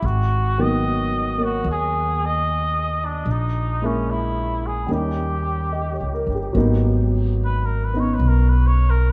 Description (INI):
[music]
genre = jazz ballad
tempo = 74 BPM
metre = 4/4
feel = swing 68% on 8ths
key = G# minor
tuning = A4 = 440 Hz
[part]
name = trumpet with cup mute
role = melody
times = 0.0-9.1 s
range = C#4 to D#5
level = -28 LUFS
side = equal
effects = diffuse ambient delay
[part]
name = warm concert grand piano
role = accompaniment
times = 0.0-9.1 s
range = D#3 to D#5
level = -27 LUFS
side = equal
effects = none
[part]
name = upright bass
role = bass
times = 0.0-9.1 s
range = G1 to D#2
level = -23 LUFS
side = equal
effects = none
[sound]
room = light reverb, studio ambience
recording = small room ambience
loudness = -21 LUFS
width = mono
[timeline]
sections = 0.0-6.5 A section; 6.5-9.1 B section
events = muted trumpet solo 6.5-9.1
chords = 0.0 G#m9; 3.3 A#m7b5; 4.9 D#7; 6.5 G#m9